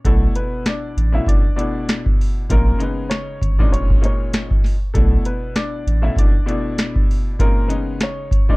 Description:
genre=hip hop, boom-bap hip-hop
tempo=98 BPM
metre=4/4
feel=swing 59% on 16ths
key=B minor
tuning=A4 = 440 Hz
part: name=dark grand piano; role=accompaniment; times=0.0-8.6 s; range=A#2 to E4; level=-26 LUFS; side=left 2 dB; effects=high-pass filter, low-pass filter
part: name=booming analog drum machine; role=drums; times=0.0-8.6 s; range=hi-hat, kick drum, rim click, snare drum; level=-17 LUFS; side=equal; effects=vintage 12-bit sampler grit
part: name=dark upright piano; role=melody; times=0.1-8.6 s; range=A3 to E5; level=-26 LUFS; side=left 1 dB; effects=high-pass filter, low-pass filter
part: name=warm sub bass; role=bass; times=0.1-6.4 s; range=E#1 to B1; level=-17 LUFS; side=equal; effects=none
room=little or no reverb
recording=dark, warm production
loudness=-16 LUFS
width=side -24 dB against mid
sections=0.0-8.6 A section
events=none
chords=0.0 Bm11; 2.5 A#m11; 4.9 Bm11; 7.4 A#m11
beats=| 0.05 0.66 1.27 1.88 | 2.50 3.11 3.72 4.33 | 4.94 5.56 6.17 6.78 | 7.39 8.01

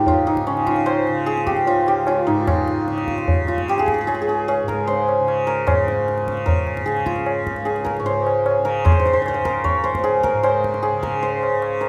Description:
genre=indian classical, Hindustani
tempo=150 BPM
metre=4/4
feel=straight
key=Db raga yaman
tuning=A4 = 441 Hz
part: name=santur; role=melody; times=0.0-11.9 s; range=Db4 to Db5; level=-22 LUFS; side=equal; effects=none
part: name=tanpura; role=drone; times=0.0-11.9 s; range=Db2 to Db3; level=-29 LUFS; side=equal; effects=none
part: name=tabla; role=percussion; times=0.1-11.9 s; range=none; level=-26 LUFS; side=equal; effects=none
room=light reverb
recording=none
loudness=-20 LUFS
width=mono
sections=0.0-5.7 A section; 5.7-11.9 B section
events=none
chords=none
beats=0.07 0.47 | 0.87 1.27 1.67 2.07 | 2.48 2.88 3.28 3.68 | 4.08 4.48 4.88 5.27 | 5.67 6.07 6.47 6.87 | 7.27 7.66 8.06 8.46 | 8.86 9.25 9.65 10.04 | 10.44 10.84 11.23 11.62

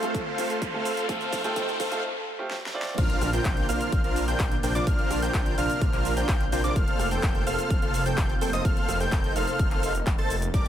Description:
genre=EDM, festival progressive house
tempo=127 BPM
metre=4/4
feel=straight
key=unclear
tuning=A4 = 441 Hz
part: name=clear baby grand piano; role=accompaniment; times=0.0-3.0 s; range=A3 to D5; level=-33 LUFS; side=right 2 dB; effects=sidechain pumping, digital delay
part: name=lush unison pad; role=sustained chords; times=0.0-10.7 s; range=C3 to C5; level=-34 LUFS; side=right 1 dB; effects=chorus, phaser, sidechain pumping
part: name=dense compressed supersaw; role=riff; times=0.0-10.7 s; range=D4 to A5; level=-30 LUFS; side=right 1 dB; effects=sidechain pumping, digital delay
part: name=big-room dance drum kit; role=drums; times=0.0-10.7 s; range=crash cymbal, handclaps, hi-hat, rim click, shaker, snare drum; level=-35 LUFS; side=equal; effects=none
part: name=riser and impact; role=sound effects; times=0.0-4.9 s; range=none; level=-35 LUFS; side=equal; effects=none
part: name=electronic kick drum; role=drums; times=0.1-10.6 s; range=none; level=-26 LUFS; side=equal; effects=none
part: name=wide unison lead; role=arpeggios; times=3.0-10.7 s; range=D6 to A6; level=-32 LUFS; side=left 1 dB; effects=cassette tape, sidechain pumping, digital delay
part: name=detuned saw bass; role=bass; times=3.0-10.6 s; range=F1 to Bb1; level=-31 LUFS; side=equal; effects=sidechain pumping
room=light reverb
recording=high-pass filter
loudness=-23 LUFS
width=side -10 dB against mid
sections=0.0-3.0 A section; 3.0-10.7 B section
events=build-up 0.0-3.0; drum fill 0.0-2.0, 2.5-3.0; riser 0.0-2.0; break 2.0-3.0; drop 3.0-10.7; impact 3.0-4.9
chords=0.0 F; 3.0 Bbadd9; 6.8 F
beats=0.15 0.62 | 1.09 1.56 2.04 2.51 | 2.98 3.45 3.92 4.40 | 4.87 5.34 5.82 6.29 | 6.76 7.23 7.71 8.18 | 8.65 9.12 9.60 10.07 | 10.54

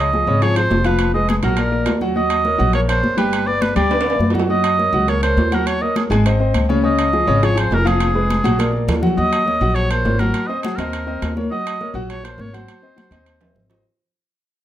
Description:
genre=Afro-Cuban jazz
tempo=206 BPM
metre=4/4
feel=straight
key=unclear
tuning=A4 = 443 Hz
part: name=warm oboe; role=melody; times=0.0-13.7 s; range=Ab4 to Eb5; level=-20 LUFS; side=right 1 dB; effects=none
part: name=clear grand piano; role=accompaniment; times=0.0-13.8 s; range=Db3 to Ab5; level=-21 LUFS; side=left 1 dB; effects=none
part: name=upright bass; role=bass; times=0.0-13.8 s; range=F1 to Gb2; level=-20 LUFS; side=equal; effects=none
part: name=congas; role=percussion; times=0.1-13.8 s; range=none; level=-24 LUFS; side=left 1 dB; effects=none
part: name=timbales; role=percussion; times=0.4-13.8 s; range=none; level=-27 LUFS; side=right 5 dB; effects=none
room=moderate studio reverb, RT60 0.7 s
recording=none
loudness=-15 LUFS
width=side -12 dB against mid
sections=0.0-9.2 A section; 9.2-13.8 B section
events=drum fill 3.9-4.5, 8.4-9.2, 13.0-13.8; fade-out 9.2-13.8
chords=0.0 Dbmaj9; 1.0 Fdim; 1.6 Bbaug; 2.2 Ebm7; 3.3 G; 4.5 Gb; 5.7 Ebm7; 6.3 Ab; 6.8 Dbadd9; 8.0 Fdim; 8.6 Bbaug7; 9.2 Ebm7; 10.3 Ebm6; 11.5 Ebm7; 12.7 Ab7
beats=0.13 0.42 0.71 | 1.00 1.29 1.58 1.87 | 2.17 2.46 2.75 3.04 | 3.33 3.62 3.92 4.21 | 4.50 4.79 5.09 5.38 | 5.67 5.96 6.26 6.55 | 6.84 7.13 7.43 7.72 | 8.01 8.30 8.60 8.89 | 9.18 9.47 9.76 10.05 | 10.35 10.64 10.93 11.22 | 11.51 11.80 12.10 12.39 | 12.68 12.97 13.26 13.55

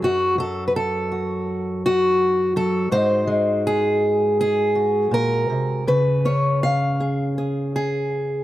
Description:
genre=folk, solo fingerstyle acoustic guitar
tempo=81 BPM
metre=4/4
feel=rubato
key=unclear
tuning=A4 = 441 Hz
part: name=fingerpicked acoustic archtop guitar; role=solo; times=0.0-8.4 s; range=F#2 to E#5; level=-18 LUFS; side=equal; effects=none
room=light reverb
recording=close, detailed microphones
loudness=-18 LUFS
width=side -14 dB against mid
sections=0.0-8.4 A section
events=none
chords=0.0 N.C.; 2.9 G#7; 5.9 C#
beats=| 0.02 0.75 1.48 2.20 | 2.92 3.65 4.39 5.13 | 5.88 6.62 7.38 8.14

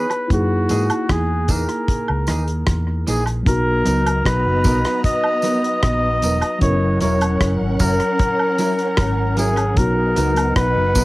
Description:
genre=lovers rock reggae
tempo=76 BPM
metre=4/4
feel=straight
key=B major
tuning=A4 = 439 Hz
part: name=breathy flugelhorn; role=melody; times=0.0-11.0 s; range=F#4 to D#5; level=-21 LUFS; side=equal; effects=analog delay, plate reverb
part: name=mellow tine electric piano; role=accompaniment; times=0.0-11.0 s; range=F#3 to A#4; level=-24 LUFS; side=left 1 dB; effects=medium stereo tremolo, cassette tape, analog delay
part: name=clean electric guitar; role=stabs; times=0.0-11.0 s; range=E3 to A#4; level=-25 LUFS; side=right 2 dB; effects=cassette tape, plate reverb
part: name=damped 70s drum kit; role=drums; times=0.1-11.0 s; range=hi-hat, kick drum, rim click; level=-21 LUFS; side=equal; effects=cassette tape, analog delay
part: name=woodblock and tambourine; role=percussion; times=0.1-11.0 s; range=none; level=-27 LUFS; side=right 2 dB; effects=none
part: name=vintage muted fingered electric bass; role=bass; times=0.3-11.0 s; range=E1 to G#2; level=-21 LUFS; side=equal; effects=none
part: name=soft string machine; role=second line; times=3.5-11.0 s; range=B3 to A#5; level=-26 LUFS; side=left 1 dB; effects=ensemble chorus, cassette tape, plate reverb
room=light reverb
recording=home recording on cassette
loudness=-16 LUFS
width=side -19 dB against mid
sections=0.0-3.5 A section; 3.5-11.0 B section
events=none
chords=0.3 F#13; 3.5 Bmaj7; 6.6 F#7; 9.8 Bmaj7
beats=| 0.30 1.09 1.88 2.67 | 3.46 4.25 5.04 5.83 | 6.62 7.41 8.20 8.99 | 9.78 10.56

